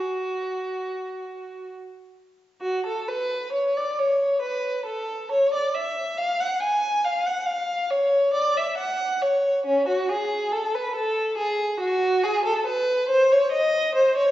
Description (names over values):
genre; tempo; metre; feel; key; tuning
classical, baroque-style suite movement for unaccompanied violin; 69 BPM; 4/4; rubato; F# minor; A4 = 442 Hz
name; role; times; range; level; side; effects
rich violin; solo; 0.0-14.3 s; C#4 to G#5; -21 LUFS; equal; none
room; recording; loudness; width
wet recital hall reverb, RT60 1.4 s; heard from further back in the room, nothing above 7.8 kHz; -21 LUFS; side -14 dB against mid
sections
0.0-2.6 A section; 2.6-14.3 B section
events
none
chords
none